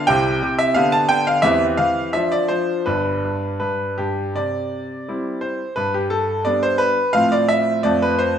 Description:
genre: classical-period piano sonatina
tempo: 77-89 BPM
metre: 2/4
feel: rubato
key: C major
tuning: A4 = 440 Hz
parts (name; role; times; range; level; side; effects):
- bright grand piano; solo; 0.0-8.4 s; G1 to A5; -17 LUFS; equal; none
room: wet recital hall reverb, RT60 1.5 s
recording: none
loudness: -17 LUFS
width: side -8 dB against mid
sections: 0.0-4.4 A section; 4.4-8.4 B section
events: none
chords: 0.1 C; 0.8 G/D; 1.4 C/E; 2.1 Dm/F; 2.9 G; 4.4 C; 5.8 G; 7.2 F/A; 7.8 F

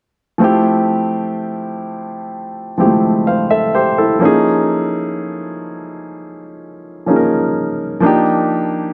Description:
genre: R&B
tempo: 63 BPM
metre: 4/4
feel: straight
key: unclear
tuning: A4 = 438 Hz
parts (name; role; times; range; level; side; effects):
- warm grand piano; accompaniment; 0.4-8.9 s; F3 to F5; -17 LUFS; equal; none
room: moderate scoring stage reverb, RT60 1.5 s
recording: none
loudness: -15 LUFS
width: mono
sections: 0.4-8.9 A section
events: none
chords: 0.4 Fmaj7; 4.2 Db69/F; 8.0 Ebmaj9

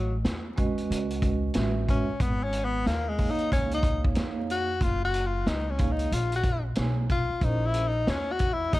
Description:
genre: hip hop, jazz-hop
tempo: 92 BPM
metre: 4/4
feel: swing 62% on 16ths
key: unclear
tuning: A4 = 440 Hz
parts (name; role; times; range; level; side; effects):
- breathy tenor saxophone; melody; 0.0-8.8 s; F#3 to F#4; -29 LUFS; left 3 dB; none
- upright bass; bass; 0.0-8.8 s; F#1 to E#2; -30 LUFS; equal; none
- vintage drum kit; drums; 0.2-8.8 s; hi-hat, kick drum, snare drum; -29 LUFS; equal; none
- vibraphone with medium mallets; accompaniment; 0.6-8.8 s; G#3 to G#5; -32 LUFS; right 4 dB; none
room: small room ambience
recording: dark, warm production, vinyl crackle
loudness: -24 LUFS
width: side -17 dB against mid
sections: 0.0-8.8 A section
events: tenor saxophone solo 0.0-8.8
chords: 0.0 Amaj9; 2.2 G#5; 3.5 C#add9; 4.8 F#maj9; 7.4 A#m7b5

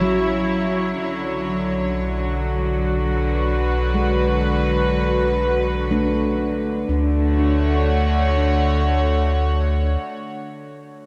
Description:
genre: ambient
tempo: 61 BPM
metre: 3/4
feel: straight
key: D lydian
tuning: A4 = 439 Hz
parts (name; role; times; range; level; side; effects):
- warm studio string section; sustained chords; 0.0-10.4 s; C#3 to C#5; -24 LUFS; equal; none
- handpan; arpeggios; 0.0-10.0 s; F#3 to D4; -28 LUFS; equal; diffuse ambient delay
- warm sub bass; bass; 0.0-10.0 s; A1 to D2; -24 LUFS; equal; none
room: wet cathedral reverb, RT60 5.1 s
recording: in a vast, echoing space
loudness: -20 LUFS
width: mono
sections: 0.0-6.9 A section; 6.9-9.8 B section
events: none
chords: 0.0 A; 1.0 Bm7; 6.9 Dmaj7

